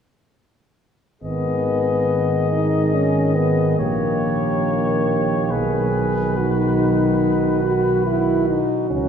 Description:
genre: classical, brass quintet.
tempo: 70 BPM.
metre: 3/4.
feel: rubato.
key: G# minor.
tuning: A4 = 441 Hz.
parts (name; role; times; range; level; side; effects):
warm trumpet; melody; 1.2-9.1 s; A#4 to D#5; -27 LUFS; left 6 dB; none.
dark flugelhorn; second line; 1.2-9.1 s; F#4 to G#4; -25 LUFS; right 5 dB; none.
clear trombone; accompaniment; 1.2-9.1 s; D#3 to E3; -26 LUFS; right 1 dB; none.
warm French horn; accompaniment; 1.2-9.1 s; A#3 to F#4; -22 LUFS; left 3 dB; none.
dark tuba; bass; 1.2-9.1 s; G#1 to C#2; -22 LUFS; right 2 dB; none.
room: wet church reverb, RT60 3.0 s.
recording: heard from further back in the room.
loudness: -17 LUFS.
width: side -7 dB against mid.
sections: 1.2-9.1 A section.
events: none.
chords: 1.2 G#m; 3.8 D#7/A#; 5.5 G#m/B; 6.4 B.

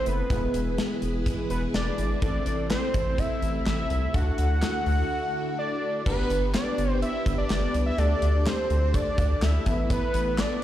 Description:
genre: synth-pop.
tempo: 125 BPM.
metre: 4/4.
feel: straight.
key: G major.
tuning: A4 = 440 Hz.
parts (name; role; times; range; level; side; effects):
fat analog lead; melody; 0.0-10.6 s; B4 to F#5; -29 LUFS; right 1 dB; analog delay.
funky polysynth comp; accompaniment; 0.0-10.6 s; G#3 to B4; -32 LUFS; left 2 dB; chorus.
string machine, violins; sustained chords; 0.0-10.6 s; C3 to B4; -33 LUFS; equal; ensemble chorus.
round analog bass; bass; 0.1-10.4 s; E1 to D2; -26 LUFS; equal; none.
gated 80s drum kit; drums; 0.1-10.5 s; crash cymbal, handclaps, hi-hat, kick drum, snare drum; -29 LUFS; equal; none.
room: light reverb, studio reverb.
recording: played on a big sound system in a bare room, stone room reverb.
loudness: -23 LUFS.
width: side -12 dB against mid.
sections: 0.0-6.1 A section; 6.1-10.6 B section.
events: break 5.1-6.1.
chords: 0.3 E; 2.2 Am; 4.1 Dadd9; 6.1 G; 8.0 Dsus4; 9.7 Asus2.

